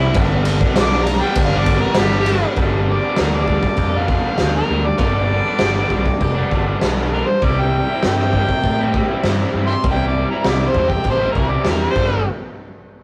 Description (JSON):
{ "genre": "garage rock duo or trio", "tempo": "99 BPM", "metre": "4/4", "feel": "straight", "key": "G mixolydian", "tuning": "A4 = 441 Hz", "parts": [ { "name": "overdriven harmonica", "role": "melody", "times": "0.0-12.3 s", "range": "E4 to D6", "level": "-24 LUFS", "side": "equal", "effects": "none" }, { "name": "raw garage guitar", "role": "riff", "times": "0.0-12.2 s", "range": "G2 to E4", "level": "-24 LUFS", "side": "equal", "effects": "overdrive" }, { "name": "overdriven picked electric bass", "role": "bass", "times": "0.0-12.2 s", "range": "F1 to A2", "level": "-23 LUFS", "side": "equal", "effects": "none" }, { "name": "raw garage drum kit", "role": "drums", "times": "0.1-12.1 s", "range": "crash cymbal, kick drum, ride cymbal, snare drum", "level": "-22 LUFS", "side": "equal", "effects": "none" } ], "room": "light reverb", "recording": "rough rehearsal-room recording", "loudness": "-17 LUFS", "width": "mono", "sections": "0.0-2.6 A section; 2.6-12.3 B section", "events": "harmonica solo 2.6-12.3; drum fill 12.0-12.3", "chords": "0.2 G; 7.4 C; 12.0 G5; 12.3 N.C.", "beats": "| 0.16 0.76 1.37 1.97 | 2.57 3.18 3.78 4.39 | 5.00 5.60 6.21 6.81 | 7.42 8.03 8.63 9.24 | 9.84 10.45 11.05 11.66 | 12.27" }